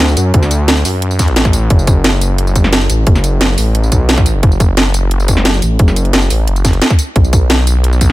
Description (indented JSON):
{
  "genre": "liquid drum and bass",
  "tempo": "176 BPM",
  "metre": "4/4",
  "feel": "straight",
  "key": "F# minor",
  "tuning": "A4 = 440 Hz",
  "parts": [
    { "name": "swelling detuned saw bass", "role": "bass", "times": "0.0-8.1 s", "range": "F#1 to F#2", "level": "-12 LUFS", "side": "equal", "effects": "none" },
    { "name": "drum and bass drum kit", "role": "drums", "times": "0.0-8.1 s", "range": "hi-hat, snare drum, tambourine", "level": "-15 LUFS", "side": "equal", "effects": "overdrive" },
    { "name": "electronic kick drum", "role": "drums", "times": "0.3-8.1 s", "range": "none", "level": "-10 LUFS", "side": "equal", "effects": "overdrive" }
  ],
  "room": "digital ambience",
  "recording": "none",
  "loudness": "-9 LUFS",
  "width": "side -17 dB against mid",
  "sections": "0.0-8.1 A section",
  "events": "none",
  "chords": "none"
}